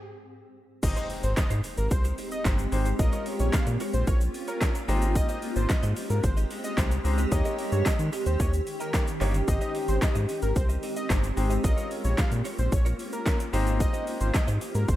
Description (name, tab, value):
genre	dance-pop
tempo	111 BPM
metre	4/4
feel	straight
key	Ab major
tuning	A4 = 440 Hz
part	fat analog lead	melody	0.8-15.0 s	Bb4 to F5	-36 LUFS	equal	sidechain pumping
part	clear baby grand piano	accompaniment	0.8-14.4 s	Ab3 to Db5	-34 LUFS	left 3 dB	sidechain pumping
part	granular cloud pad	sustained chords	1.8-15.0 s	Eb3 to G4	-33 LUFS	equal	built-in reverb, sidechain pumping
part	direct-recorded clean electric guitar	riff	0.8-14.9 s	Ab3 to Eb5	-42 LUFS	right 6 dB	ensemble chorus
part	round analog bass	bass	0.8-15.0 s	G1 to Eb3	-26 LUFS	equal	sidechain pumping
part	pop drum kit	drums	0.8-15.0 s	crash cymbal, handclaps, hi-hat, kick drum, shaker, snare drum	-28 LUFS	equal	overdrive
part	egg shaker	percussion	0.8-15.0 s	none	-46 LUFS	left 2 dB	none
part	impact	sound effects	1.0-3.0 s	none	-45 LUFS	equal	none
room	light reverb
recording	rough home demo mix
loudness	-24 LUFS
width	side -14 dB against mid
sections	0.8-15.0 A section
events	riser 0.0-0.8; stop 0.0-0.8; drop 0.8-15.0; impact 0.8-3.0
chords	0.0 N.C.; 0.8 Abmaj7; 3.0 Bbm; 4.9 Abmaj7; 7.3 Eb7; 9.5 Abmaj7; 11.6 Bbm; 13.5 Abmaj7